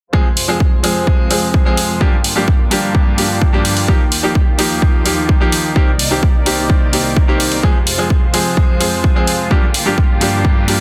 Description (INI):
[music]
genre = EDM, festival progressive house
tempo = 128 BPM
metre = 4/4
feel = straight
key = unclear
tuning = A4 = 440 Hz
[part]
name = bright grand piano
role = accompaniment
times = 0.1-10.8 s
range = G2 to Ab4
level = -20 LUFS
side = equal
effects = sidechain pumping, dub echo
[part]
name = clear symphonic string section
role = sustained chords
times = 0.1-10.8 s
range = C2 to D5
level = -24 LUFS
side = equal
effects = sidechain pumping, low-pass filter
[part]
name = electronic kick drum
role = drums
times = 0.1-10.5 s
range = none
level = -15 LUFS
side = equal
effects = overdrive
[part]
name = electronic hi-hat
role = drums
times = 0.4-10.8 s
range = none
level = -20 LUFS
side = equal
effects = overdrive
[sound]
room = light reverb, studio reverb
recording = dense, heavily limited modern master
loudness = -14 LUFS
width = mono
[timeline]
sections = 0.1-10.8 A section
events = filter sweep on string section 0.1-10.8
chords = 0.1 Fm; 2.0 Gm7; 3.9 Ebadd9; 5.8 Cm7; 7.6 Fm; 9.5 Gm7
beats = | 0.13 0.60 1.07 1.54 | 2.01 2.48 2.95 3.42 | 3.88 4.35 4.82 5.29 | 5.76 6.23 6.70 7.17 | 7.63 8.10 8.57 9.04 | 9.51 9.98 10.45